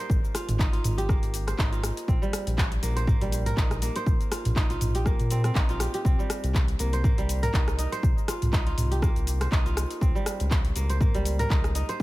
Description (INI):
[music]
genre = afro house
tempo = 121 BPM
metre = 4/4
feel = swing 56% on 16ths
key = C phrygian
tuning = A4 = 440 Hz
[part]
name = kora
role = arpeggios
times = 0.0-12.0 s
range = G3 to C5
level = -32 LUFS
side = right 1 dB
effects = sidechain pumping, ping-pong delay
[part]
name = afro-pop drum kit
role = drums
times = 0.0-12.0 s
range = handclaps, hi-hat, rim click, shaker, toms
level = -32 LUFS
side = equal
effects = studio reverb
[part]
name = round analog bass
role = bass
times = 0.1-12.0 s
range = Ab1 to Bb2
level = -28 LUFS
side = equal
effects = sidechain pumping
[part]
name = electronic kick drum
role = drums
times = 0.1-12.0 s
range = none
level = -25 LUFS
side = equal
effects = studio reverb
[sound]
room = little or no reverb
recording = none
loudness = -23 LUFS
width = side -18 dB against mid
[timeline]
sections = 0.0-12.0 A section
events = none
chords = 0.0 Abmaj7; 2.1 Bb5; 6.1 Cm7; 10.0 Dbmaj9